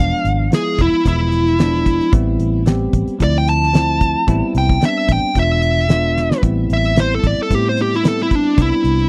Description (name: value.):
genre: straight-eighth soul blues.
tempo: 112 BPM.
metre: 4/4.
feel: swing 54% on 16ths.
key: A minor.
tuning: A4 = 440 Hz.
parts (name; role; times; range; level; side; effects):
dark smooth lead guitar; melody; 0.0-9.1 s; D4 to A5; -20 LUFS; equal; overdrive.
bell-like tine electric piano; accompaniment; 0.0-9.1 s; F3 to G4; -23 LUFS; equal; none.
vintage muted fingered electric bass; bass; 0.0-9.1 s; E1 to A2; -21 LUFS; equal; none.
damped 70s drum kit; drums; 0.3-9.1 s; hi-hat, kick drum, snare drum; -18 LUFS; equal; none.
room: small room ambience.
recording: dry, close 1970s-style studio recording.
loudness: -16 LUFS.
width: mono.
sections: 0.0-6.4 A section; 6.4-9.1 A section.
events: lead electric guitar solo 0.0-6.4, 6.4-9.1; drum fill 6.2.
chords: 0.0 E7b9; 2.1 Am7; 3.2 Dm7; 4.3 Am7; 5.4 E7b9; 6.4 Am7.